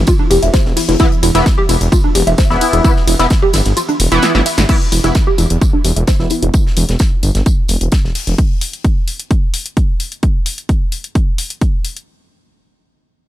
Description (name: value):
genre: driving peak-time techno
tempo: 130 BPM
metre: 4/4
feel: straight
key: E minor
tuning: A4 = 441 Hz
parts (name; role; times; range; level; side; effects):
- detuned saw bass; bass; 0.0-8.3 s; E1 to G1; -14 LUFS; equal; sidechain pumping
- analog drone; drone; 0.0-4.7 s; E3 to B3; -29 LUFS; left 1 dB; none
- woody wave-folded pluck; riff; 0.1-6.5 s; D4 to E5; -18 LUFS; right 1 dB; ensemble chorus, sidechain pumping, digital delay
- damped 70s drum kit; drums; 0.1-8.4 s; hi-hat, snare drum, tambourine; -26 LUFS; equal; sidechain pumping on hats, high-pass filter on hats, high-pass filter on snare, sidechain pumping on perc, high-pass filter on perc, high-pass filter on room
- electronic kick drum; drums; 0.1-11.7 s; none; -13 LUFS; equal; overdrive
- punchy analog drum machine; drums; 0.1-12.1 s; crash cymbal, hi-hat, ride cymbal, snare drum; -21 LUFS; left 2 dB; overdrive
- sync-sweep polysynth; stabs; 1.0-6.5 s; E3 to E4; -19 LUFS; left 1 dB; chorus, sidechain pumping, ping-pong delay
room: little or no reverb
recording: none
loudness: -11 LUFS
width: side -14 dB against mid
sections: 0.0-4.7 A section; 4.7-12.1 B section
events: drop 0.0-4.7; kick drops out 3.8-4.7; drum fill 4.2-4.7; filter sweep on synth arpeggio sound 4.7-6.5; filter sweep on analog polysynth 4.7-6.5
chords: 0.0 E5